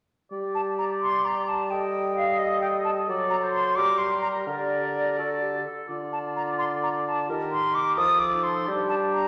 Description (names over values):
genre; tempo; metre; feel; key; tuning
quick classical-period movement for symphony orchestra; 86 BPM (dotted quarters); 6/8; straight; G minor; A4 = 438 Hz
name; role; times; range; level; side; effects
bright clarinet; second line; 0.3-9.3 s; D4 to A4; -38 LUFS; equal; none
warm oboe; second line; 0.3-9.3 s; G4 to Eb5; -33 LUFS; equal; none
mellow bassoon; accompaniment; 0.3-9.3 s; D3 to G3; -32 LUFS; equal; none
silver concert flute; second line; 0.5-9.3 s; D5 to Eb6; -28 LUFS; equal; none
room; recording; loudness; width
wet scoring stage reverb, RT60 1.4 s; none; -26 LUFS; mono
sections
0.3-9.3 A section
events
none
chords
0.3 G5; 3.1 D7/F#; 3.8 Gm; 4.5 Gm/D; 7.3 Eb; 8.0 F; 8.7 G5